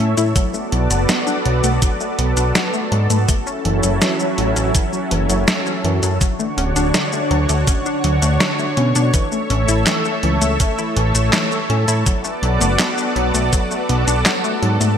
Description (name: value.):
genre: synthwave.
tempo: 82 BPM.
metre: 4/4.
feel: straight.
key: unclear.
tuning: A4 = 441 Hz.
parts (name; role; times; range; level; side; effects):
analog string pad; sustained chords; 0.0-15.0 s; D3 to E5; -20 LUFS; equal; ensemble chorus, sidechain pumping.
analog pluck; arpeggios; 0.0-14.9 s; E3 to E4; -24 LUFS; left 3 dB; chorus, ping-pong delay.
fat analog bass; bass; 0.0-15.0 s; D1 to B2; -18 LUFS; equal; sidechain pumping.
detuned 8-bit digital drum machine; drums; 0.2-15.0 s; handclaps, hi-hat, shaker, snare drum; -21 LUFS; equal; none.
electronic kick drum; drums; 0.4-13.7 s; none; -17 LUFS; equal; none.
room: moderate plate reverb, RT60 2.6 s.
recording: bright 1980s-style digital production.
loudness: -15 LUFS.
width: side -8 dB against mid.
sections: 0.0-15.0 A section.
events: none.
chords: 0.4 Bm7; 3.3 F#m7; 6.2 Dmaj7; 9.1 A; 12.1 Bm7.